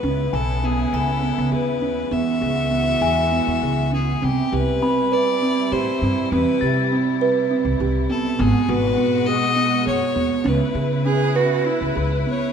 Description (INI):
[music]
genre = contemporary instrumental, chamber music in an uneven meter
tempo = 202 BPM (eighths)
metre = 7/8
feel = straight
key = unclear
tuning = A4 = 439 Hz
[part]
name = rich fiddle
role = melody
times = 0.0-12.5 s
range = G4 to E5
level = -24 LUFS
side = left 4 dB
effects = none
[part]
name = rich studio string section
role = sustained chords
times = 0.0-12.5 s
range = B2 to B4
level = -29 LUFS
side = left 4 dB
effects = none
[part]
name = kalimba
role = arpeggios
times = 0.0-12.5 s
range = B3 to G#5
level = -21 LUFS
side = right 4 dB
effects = none
[part]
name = upright bass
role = bass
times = 0.0-12.2 s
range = G#1 to C#3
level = -24 LUFS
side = equal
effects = none
[part]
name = glockenspiel with rubber mallets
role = texture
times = 0.3-7.7 s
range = G#5 to A6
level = -29 LUFS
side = left 6 dB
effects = none
[part]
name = rich cello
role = second line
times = 11.1-12.1 s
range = E4 to G#4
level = -24 LUFS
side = right 4 dB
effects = none
[sound]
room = moderate scoring stage reverb, RT60 1.7 s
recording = minimal, uncompressed stereo recording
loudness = -18 LUFS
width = side -7 dB against mid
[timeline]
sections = 0.0-4.2 A section; 4.2-12.5 B section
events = none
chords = 0.0 C#m7; 2.1 Eadd9; 4.2 Cmaj7; 8.4 G#m7; 10.5 C#m7